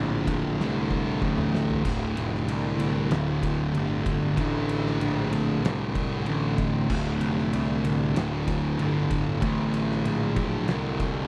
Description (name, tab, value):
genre	stoner and doom metal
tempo	95 BPM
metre	4/4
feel	straight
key	unclear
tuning	A4 = 441 Hz
part	thick fuzz guitar	riff	0.0-11.3 s	D2 to D3	-32 LUFS	equal	distortion
part	thick fuzz guitar	riff	0.0-11.3 s	D2 to D3	-31 LUFS	equal	distortion
part	fuzz picked electric bass	bass	0.0-11.3 s	D1 to C2	-32 LUFS	equal	overdrive
part	oversized low-tuned drum kit	drums	0.3-11.1 s	crash cymbal, kick drum, ride cymbal, snare drum, splash cymbal, toms	-36 LUFS	equal	none
room	little or no reverb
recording	dry, close 1970s-style studio recording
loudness	-26 LUFS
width	mono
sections	0.0-11.3 A section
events	drum fill 0.6-1.9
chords	0.0 D5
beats	0.59 1.22 | 1.85 2.48 3.11 3.74 | 4.37 5.00 5.63 6.27 | 6.90 7.53 8.16 8.79 | 9.42 10.05 10.68